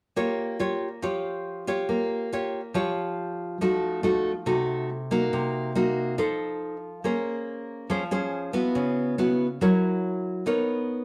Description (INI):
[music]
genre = bossa nova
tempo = 140 BPM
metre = 4/4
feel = straight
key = Bb dorian, Bb minor from 7.0 s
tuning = A4 = 440 Hz
[part]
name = nylon-string guitar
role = solo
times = 0.2-11.0 s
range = C3 to Db5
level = -27 LUFS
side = equal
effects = none
[sound]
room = wet studio reverb, RT60 0.8 s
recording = band playing live in one room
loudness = -27 LUFS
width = mono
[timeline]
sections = 0.2-7.0 A section; 7.0-11.0 B section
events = none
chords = 0.2 Bbm6; 3.6 F7b9; 5.3 Cm7b5; 6.2 F7; 7.0 Bbm9; 8.7 Dbm7; 9.6 Gb7; 10.5 Bmaj9